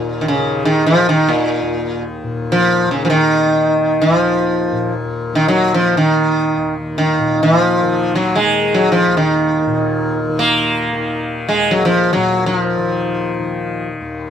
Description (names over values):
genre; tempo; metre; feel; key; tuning
indian classical, Hindustani; free time; none; none; unclear; A4 = 440 Hz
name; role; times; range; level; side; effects
sitar; melody; 0.0-13.9 s; Bb2 to Bb3; -14 LUFS; equal; none
tanpura; drone; 0.0-14.3 s; Eb2 to Eb3; -23 LUFS; left 3 dB; none
room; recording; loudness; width
light reverb; dry, close 1970s-style studio recording; -13 LUFS; side -8 dB against mid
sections
0.0-14.3 A section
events
none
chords
none